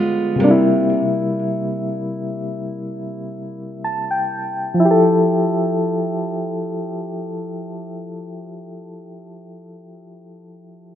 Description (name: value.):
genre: R&B.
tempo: free time.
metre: none.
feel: none.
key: F major.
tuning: A4 = 440 Hz.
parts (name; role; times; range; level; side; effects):
soft electric-piano-like synth keys; accompaniment; 0.0-10.9 s; C3 to A5; -19 LUFS; left 1 dB; chorus, tremolo.
picked steel-string acoustic guitar; arpeggios; 0.0-1.0 s; C3 to F4; -20 LUFS; right 4 dB; ping-pong delay.
room: light reverb, digital ambience.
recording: rough home demo mix, low-pass filter.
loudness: -17 LUFS.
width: side -10 dB against mid.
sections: 0.0-4.8 A section; 4.8-8.8 B section.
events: filter sweep 0.0-4.8; synth keys fill 3.3-4.8.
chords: 0.4 C7; 4.8 Fmaj9.